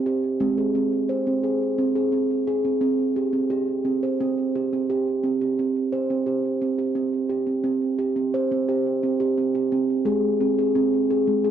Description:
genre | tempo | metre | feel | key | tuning
world meditative | 174 BPM (eighths) | 7/8 | straight | unclear | A4 = 445 Hz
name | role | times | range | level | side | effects
steel tongue drum | solo | 0.0-11.5 s | Ab3 to C5 | -21 LUFS | right 2 dB | ping-pong delay
room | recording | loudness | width
wet echo chamber reverb, RT60 1.7 s, small room ambience | dark, warm production | -21 LUFS | side -9 dB against mid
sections
0.0-7.6 A section; 7.6-11.5 B section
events
none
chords
0.4 Ab; 2.8 C5; 10.1 Ab

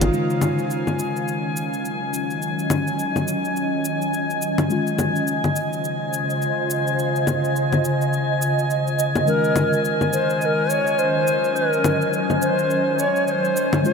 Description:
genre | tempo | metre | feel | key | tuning
organic downtempo | 105 BPM | 4/4 | swing 59% on 16ths | Eb dorian | A4 = 442 Hz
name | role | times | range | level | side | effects
muted felt-like synth keys | accompaniment | 0.0-13.9 s | Eb3 to F4 | -29 LUFS | left 2 dB | chorus, low-pass filter, analog delay
ethereal airy pad | sustained chords | 0.1-13.9 s | Db3 to Eb5 | -23 LUFS | right 1 dB | ensemble chorus, built-in reverb
electronic hi-hat, congas and shaker | drums | 0.0-13.9 s | none | -25 LUFS | left 2 dB | none
drifting glass-harmonics texture | texture | 0.0-13.9 s | F5 to Ab5 | -26 LUFS | left 4 dB | chorus, built-in reverb
reedy low Native American-style wooden flute | melody | 9.3-13.9 s | Bb4 to Db5 | -22 LUFS | left 1 dB | ping-pong delay
room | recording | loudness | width
wet huge ambient reverb, RT60 8.3 s | dreamy mix soaked in reverb | -19 LUFS | side -5 dB against mid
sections
0.1-13.9 A section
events
filter sweep on synth keys 0.1-13.9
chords
0.1 Ebm7; 4.7 Dbmaj9; 9.3 Ebm7

